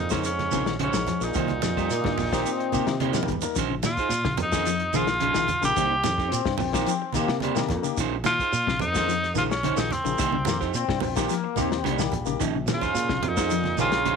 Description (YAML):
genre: afrobeat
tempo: 108 BPM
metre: 4/4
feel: straight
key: Bb dorian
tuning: A4 = 445 Hz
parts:
  - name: bright tenor saxophone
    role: melody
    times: 0.0-14.2 s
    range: C4 to G4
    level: -26 LUFS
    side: equal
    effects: none
  - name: clear trombone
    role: second line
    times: 0.0-3.3, 12.7-14.2 s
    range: Ab2 to Db3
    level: -32 LUFS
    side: right 14 dB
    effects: none
  - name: fingered electric bass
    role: bass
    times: 0.0-14.2 s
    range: Bb1 to C3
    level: -31 LUFS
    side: right 1 dB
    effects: none
  - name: barky tine electric piano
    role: accompaniment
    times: 0.1-14.0 s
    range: Bb3 to Bb4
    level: -33 LUFS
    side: left 12 dB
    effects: none
  - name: semi-hollow electric guitar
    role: arpeggios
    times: 0.1-14.1 s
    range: C3 to G3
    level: -32 LUFS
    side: left 12 dB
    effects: none
  - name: electric guitar at the edge of break-up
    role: stabs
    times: 0.1-14.2 s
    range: Bb3 to C5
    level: -31 LUFS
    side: right 13 dB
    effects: wide subtle chorus
  - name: warm soul drum kit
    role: drums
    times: 0.1-14.2 s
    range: hi-hat, kick drum, snare drum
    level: -31 LUFS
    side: left 5 dB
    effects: none
  - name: shekere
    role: percussion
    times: 0.1-14.1 s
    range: none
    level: -34 LUFS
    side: right 11 dB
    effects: none
  - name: congas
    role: percussion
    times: 0.4-14.2 s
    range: none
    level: -32 LUFS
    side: right 11 dB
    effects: none
  - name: clear trombone section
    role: second line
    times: 1.9-12.5 s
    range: G3 to C4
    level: -30 LUFS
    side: left 10 dB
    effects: slapback echo
room: moderate spring reverb, RT60 1.3 s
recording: 1960s-style stereo with parts hard left and right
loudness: -22 LUFS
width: side -6 dB against mid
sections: 0.0-3.6 A section; 3.6-14.2 A section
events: drum fill 3.1-3.6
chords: 0.0 Bbm11; 1.3 Cm7; 3.6 Bbm11; 5.8 Cm7; 8.0 Bbm11; 10.2 Cm7; 12.4 Bbm11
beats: 0.24 0.79 | 1.34 1.90 2.45 3.00 | 3.56 4.11 4.66 5.21 | 5.76 6.32 6.87 7.42 | 7.97 8.53 9.08 9.63 | 10.18 10.74 11.29 11.84 | 12.40 12.95 13.50 14.05